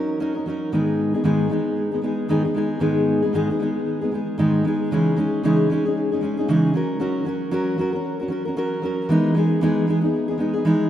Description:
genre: pop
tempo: 115 BPM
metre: 4/4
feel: swing 60% on 16ths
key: unclear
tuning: A4 = 440 Hz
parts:
  - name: fingerpicked steel-string acoustic guitar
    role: solo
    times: 0.0-10.9 s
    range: G#2 to A#4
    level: -19 LUFS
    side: equal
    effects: digital delay
room: wet lush hall reverb, RT60 2.7 s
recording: rough home demo mix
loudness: -19 LUFS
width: side -11 dB against mid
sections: 0.0-4.9 A section; 4.9-10.9 B section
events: none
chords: 0.0 F#6; 0.7 G#m; 4.9 C#madd9; 6.7 F#; 9.1 Emaj7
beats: 0.20 | 0.72 1.25 1.77 2.29 | 2.81 3.34 3.86 4.38 | 4.90 5.42 5.95 6.47 | 6.99 7.51 8.04 8.56 | 9.08 9.60 10.12 10.64

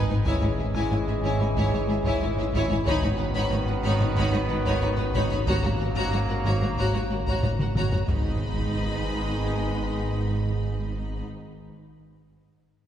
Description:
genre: cinematic, hybrid orchestral and electronic film score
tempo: 92 BPM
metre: 4/4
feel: straight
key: G# minor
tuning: A4 = 440 Hz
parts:
  - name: warm symphonic violin section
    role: melody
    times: 0.0-11.2 s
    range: E5 to B5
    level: -36 LUFS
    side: left 3 dB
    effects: none
  - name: warm symphonic violin section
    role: second line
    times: 0.0-11.2 s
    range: G#4 to D#5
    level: -34 LUFS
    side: left 1 dB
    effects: none
  - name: warm symphonic viola section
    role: accompaniment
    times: 0.0-11.2 s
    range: D#4 to F#4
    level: -33 LUFS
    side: left 1 dB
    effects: none
  - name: mellow French horn section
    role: sustained chords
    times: 0.0-11.2 s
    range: B3 to G#4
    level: -35 LUFS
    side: left 3 dB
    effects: none
  - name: warm trombone section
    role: sustained chords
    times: 0.0-11.2 s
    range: D#3 to B3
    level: -33 LUFS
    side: right 2 dB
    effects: none
  - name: round analog bass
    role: riff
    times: 0.0-8.0 s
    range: G#2 to G#3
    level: -30 LUFS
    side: left 1 dB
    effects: none
  - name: sub bass with octave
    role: bass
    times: 0.0-11.2 s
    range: G#1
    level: -34 LUFS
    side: equal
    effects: none
  - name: impact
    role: sound effects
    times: 0.0-0.3, 8.1-11.3 s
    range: none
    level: -39 LUFS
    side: equal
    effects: none
  - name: dark symphonic cello section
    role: bass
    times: 0.1-11.2 s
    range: G#2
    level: -31 LUFS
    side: right 2 dB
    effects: none
  - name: solo taiko drums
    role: drums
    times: 0.1-9.3 s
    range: none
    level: -30 LUFS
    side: equal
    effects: none
  - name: warm symphonic double bass section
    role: bass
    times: 0.3-11.2 s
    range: G#1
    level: -32 LUFS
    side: right 2 dB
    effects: none
room: wet church reverb, RT60 2.5 s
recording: recorded in a church or concert hall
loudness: -23 LUFS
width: side -10 dB against mid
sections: 0.0-8.1 A section; 8.1-10.7 B section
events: impact 0.0, 8.1-10.7; drum fill 7.4-8.1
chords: 0.3 C#m/G#; 2.9 Badd9/G#; 5.5 F#/G#; 8.1 G#m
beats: | 0.26 0.91 1.56 2.22 | 2.87 3.52 4.17 4.83 | 5.48 6.13 6.78 7.43 | 8.09 8.74 9.39 10.04

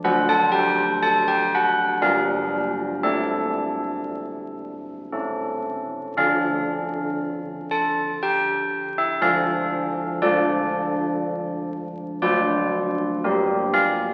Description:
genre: classical, tune for church bells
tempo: 59 BPM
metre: 3/4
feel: straight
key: D minor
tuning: A4 = 439 Hz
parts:
  - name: old church bells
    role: solo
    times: 0.0-14.1 s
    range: D3 to A5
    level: -23 LUFS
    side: equal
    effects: none
room: wet church reverb, RT60 3.0 s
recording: very old 78 rpm record, vinyl crackle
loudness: -23 LUFS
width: mono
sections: 0.0-14.1 A section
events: none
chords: 0.0 D7/F#; 2.0 Gm; 3.1 Asus4; 5.1 A; 6.2 Dm; 9.2 Dm/F; 12.2 D7/F#; 13.2 Gm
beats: | 0.03 1.04 2.04 | 3.05 4.09 5.13 | 6.17 7.20 8.22 | 9.23 10.23 11.23 | 12.23 13.23

